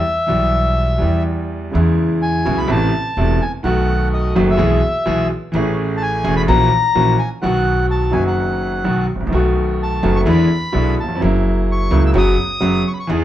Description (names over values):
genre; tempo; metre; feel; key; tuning
tango; 127 BPM; 4/4; rubato; E major; A4 = 440 Hz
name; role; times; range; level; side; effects
bandoneon; melody; 0.0-13.1 s; D#5 to E6; -20 LUFS; left 2 dB; none
clear concert grand piano; accompaniment; 0.3-13.2 s; E1 to G#4; -17 LUFS; equal; none
upright bass; bass; 0.3-13.2 s; E1 to E2; -20 LUFS; equal; none
room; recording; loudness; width
wet studio reverb, RT60 0.8 s; band playing live in one room; -14 LUFS; side -12 dB against mid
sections
0.0-1.7 A section; 1.7-13.2 B section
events
none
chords
0.0 Em; 1.7 E6; 2.7 Amadd9; 3.6 B7; 4.6 E/B; 5.5 Amaj7; 6.5 F#7/A#; 7.4 B; 9.3 B7; 10.3 E7; 11.2 F#7; 12.2 Bsus2/F#